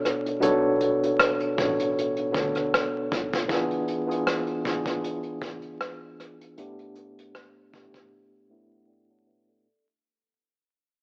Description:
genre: lo-fi hip hop.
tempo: 78 BPM.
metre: 4/4.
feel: swing 56% on 16ths.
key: unclear.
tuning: A4 = 442 Hz.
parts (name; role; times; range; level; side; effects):
tine electric piano; accompaniment; 0.0-9.9 s; A2 to A5; -28 LUFS; equal; low-pass filter.
vintage brush drum kit; drums; 0.1-8.1 s; hi-hat, kick drum, rim click; -29 LUFS; equal; none.
warm double bass; bass; 0.4-3.5 s; A1 to D2; -39 LUFS; equal; none.
room: light reverb, studio reverb.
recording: dry, gritty hardware recording, vinyl crackle, AM radio sound.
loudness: -26 LUFS.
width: mono.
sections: 0.0-9.6 A section.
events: fade-out 0.0-9.6; filter sweep on tine electric piano 0.0-9.6; break 8.1-9.6.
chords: 0.0 Bm9; 3.5 E7b9; 6.6 A9sus4.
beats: | 0.42 1.19 1.96 2.73 | 3.49 4.26 5.03 5.80 | 6.57 7.34 8.11 8.88.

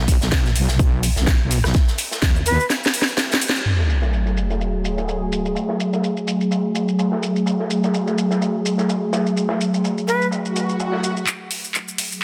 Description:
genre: bass house.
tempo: 126 BPM.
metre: 4/4.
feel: swing 55% on 16ths.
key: F# minor.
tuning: A4 = 441 Hz.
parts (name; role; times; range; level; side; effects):
wobble bass; bass; 0.0-2.6 s; B1 to D#2; -22 LUFS; equal; chorus, tube saturation, sidechain pumping.
electronic kick drum; drums; 0.1-2.3 s; none; -20 LUFS; equal; none.
house drum kit; drums; 0.1-12.2 s; handclaps, hi-hat, rim click, shaker, snare drum; -26 LUFS; equal; low-pass filter on perc, low-pass filter on hats, low-pass filter on snare.
modern studio drum kit; drums; 0.1-11.2 s; hi-hat, snare drum; -32 LUFS; equal; high-pass filter on hats, low-pass filter on hats, soft clipping on snare, high-pass filter on snare, low-pass filter on snare, high-pass filter on room, low-pass filter on room.
breathy bright jazz flute; melody; 2.5-2.6, 10.1-10.3 s; B4; -26 LUFS; equal; digital delay.
sweeping resonant pad; sustained chords; 3.7-12.2 s; F#3 to G#4; -23 LUFS; equal; chorus, sidechain pumping.
sub drop and swell; sound effects; 3.7-5.6, 10.5-11.3 s; none; -25 LUFS; equal; none.
room: moderate plate reverb, RT60 2.8 s.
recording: dense, heavily limited modern master.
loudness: -20 LUFS.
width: mono.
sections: 0.0-3.7 A section; 3.7-11.3 B section.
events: drum fill 2.7-3.7, 11.3-12.2; band accent 3.5; impact 3.7-5.6; swell 10.5-11.3.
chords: 0.0 N.C.; 3.7 F#madd9.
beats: 0.32 0.80 1.27 | 1.75 2.22 2.70 3.18 | 3.65 4.13 4.60 5.08 | 5.56 6.03 6.51 6.99 | 7.46 7.94 8.41 8.89 | 9.37 9.84 10.32 10.79 | 11.27 11.75 12.22.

